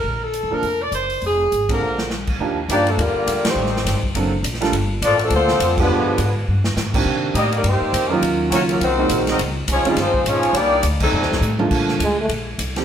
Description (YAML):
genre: jazz, big band swing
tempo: 206 BPM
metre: 4/4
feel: swing 59% on 8ths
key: Bb major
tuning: A4 = 436 Hz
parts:
  - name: warm saxophone section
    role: melody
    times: 0.0-11.6 s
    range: F3 to Eb5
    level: -20 LUFS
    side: left 2 dB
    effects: none
  - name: upright bass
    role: bass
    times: 0.0-12.8 s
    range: F1 to C3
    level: -23 LUFS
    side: equal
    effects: none
  - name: swinging big-band drum kit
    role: drums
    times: 0.3-12.8 s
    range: crash cymbal, hi-hat, kick drum, ride cymbal, snare drum, toms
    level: -24 LUFS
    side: equal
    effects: none
  - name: clear concert grand piano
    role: accompaniment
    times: 0.5-12.8 s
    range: D3 to Bb4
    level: -22 LUFS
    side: right 3 dB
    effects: none
  - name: muted trombone section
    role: second line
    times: 1.7-11.6 s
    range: C3 to Eb4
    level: -24 LUFS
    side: right 1 dB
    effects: none
  - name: mellow trombone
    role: melody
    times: 12.0-12.3 s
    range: Ab3 to A3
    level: -22 LUFS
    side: right 1 dB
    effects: none
room: wet large studio reverb, RT60 1.3 s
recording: band playing live in one room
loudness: -16 LUFS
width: side -9 dB against mid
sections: 0.0-2.4 A section; 2.4-11.7 B section; 11.7-12.8 C section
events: band accent 1.7, 3.4, 5.8, 11.0; drum fill 1.8, 6.5, 11.4; trombone solo 11.7-12.8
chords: 0.1 Bbmaj7; 1.2 Fm; 1.8 Bb; 2.4 Ebmaj9; 3.6 Am7b5; 4.1 D7b13; 4.7 Gm9; 5.9 G7b9; 7.1 Cm9; 8.2 Ebm9; 8.8 Ab9; 9.4 Dbmaj9#11; 10.6 Cm9; 11.1 F13; 11.7 Bbmaj7